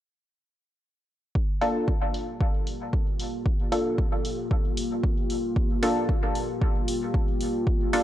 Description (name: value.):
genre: dub techno.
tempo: 114 BPM.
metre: 4/4.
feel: straight.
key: G minor.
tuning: A4 = 444 Hz.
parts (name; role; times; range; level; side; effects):
deep dark ambient pad; sustained chords; 2.2-8.0 s; Bb3 to G4; -31 LUFS; left 1 dB; chorus, built-in reverb, sidechain pumping.
electronic kick drum; drums; 1.4-7.8 s; none; -25 LUFS; equal; none.
filtered dub chord stab; stabs; 1.6-8.0 s; Bb3 to A4; -28 LUFS; equal; chorus, phaser, sidechain pumping, dub echo.
electronic hi-hat; drums; 1.6-8.0 s; none; -37 LUFS; equal; low-pass filter on hats.
room: light reverb.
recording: dry, gritty hardware recording, cassette tape.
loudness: -24 LUFS.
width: side -12 dB against mid.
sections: 1.4-8.0 A section.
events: none.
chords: 1.4 Gm7.